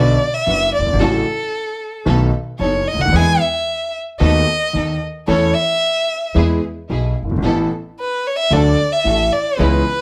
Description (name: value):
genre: tango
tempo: 112 BPM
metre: 4/4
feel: rubato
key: A major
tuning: A4 = 440 Hz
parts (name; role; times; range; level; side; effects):
- warm violin; second line; 0.0-10.0 s; A4 to G#5; -20 LUFS; equal; none
- warm grand piano; accompaniment; 0.0-9.8 s; F#1 to A4; -21 LUFS; equal; none
- warm studio string section; stabs; 0.0-9.8 s; B3 to B4; -28 LUFS; equal; none
- upright bass; bass; 0.0-9.8 s; F#1 to E2; -21 LUFS; equal; none
room: moderate studio reverb, RT60 0.8 s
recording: none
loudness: -17 LUFS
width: mono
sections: 0.0-10.0 A section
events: violin solo 0.0-10.0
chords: 0.0 Bm; 1.0 F#m/A; 2.1 B7; 3.1 E; 4.2 B7/D#; 5.3 A/E; 6.4 E; 7.4 Asus2; 8.5 D